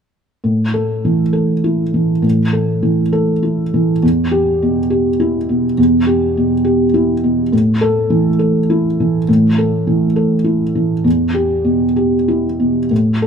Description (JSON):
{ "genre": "neoclassical minimalist piano", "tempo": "101 BPM", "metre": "3/4", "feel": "rubato", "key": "unclear", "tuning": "A4 = 441 Hz", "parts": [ { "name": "felt-muted upright piano", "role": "solo", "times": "0.4-13.3 s", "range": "E2 to A4", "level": "-12 LUFS", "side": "equal", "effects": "none" } ], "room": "light reverb", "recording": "minimal, uncompressed stereo recording", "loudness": "-13 LUFS", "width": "side -7 dB against mid", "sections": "0.4-13.3 A section", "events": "none", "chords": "0.4 A5; 4.0 Em; 7.5 A5; 11.1 Em" }